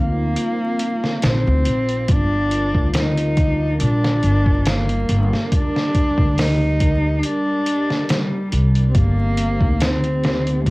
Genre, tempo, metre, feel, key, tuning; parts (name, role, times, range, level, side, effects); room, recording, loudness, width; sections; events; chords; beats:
trip hop; 70 BPM; 4/4; swing 54% on 16ths; G minor; A4 = 438 Hz
dark cello; melody; 0.0-10.7 s; G3 to Eb4; -21 LUFS; equal; vintage 12-bit sampler grit, tape echo
dark analog pad; sustained chords; 0.0-10.7 s; G3 to Bb4; -29 LUFS; left 1 dB; chorus, cassette tape
upright bass; bass; 0.0-10.7 s; G1 to D2; -19 LUFS; equal
trip hop sampler-style drum kit; drums; 0.4-10.7 s; hi-hat, kick drum, snare drum; -20 LUFS; equal; cassette tape
light reverb; home recording on cassette, vinyl crackle; -16 LUFS; side -22 dB against mid
0.0-10.7 A section
0.0 Cm; 2.1 Gm7; 8.9 Cm/G
0.38 1.24 | 2.09 2.95 3.81 4.66 | 5.52 6.38 7.24 8.09 | 8.95 9.81 10.66